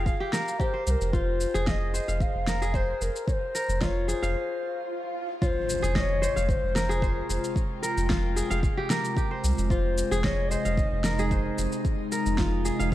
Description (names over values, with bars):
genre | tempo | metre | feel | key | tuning
organic downtempo | 112 BPM | 4/4 | straight | F minor | A4 = 439 Hz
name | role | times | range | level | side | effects
reedy bansuri | melody | 0.0-11.6 s | Bb4 to F5 | -32 LUFS | left 2 dB | tape echo, shimmer reverb
kora | arpeggios | 0.0-12.9 s | F4 to F5 | -31 LUFS | left 1 dB | tape echo, shimmer reverb
warm sub bass | bass | 0.0-12.9 s | F1 to C2 | -28 LUFS | equal | none
electronic kick drum | drums | 0.1-12.9 s | none | -28 LUFS | equal | small room ambience
electronic shaker and snare drum | drums | 0.1-12.9 s | none | -32 LUFS | equal | small room ambience
swell and impact | sound effects | 4.6-7.6 s | none | -36 LUFS | equal | none
airy breathy pad | sustained chords | 5.4-12.9 s | C3 to G5 | -32 LUFS | right 1 dB | chorus, sidechain pumping, shimmer reverb
room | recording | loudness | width
light reverb, digital ambience | dark, warm production | -24 LUFS | side -14 dB against mid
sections
0.0-5.4 A section; 5.4-12.9 B section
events
break 4.3-5.4; swell 4.6-5.4; impact 5.4-7.6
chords
0.0 Fmadd9; 1.1 Ab/F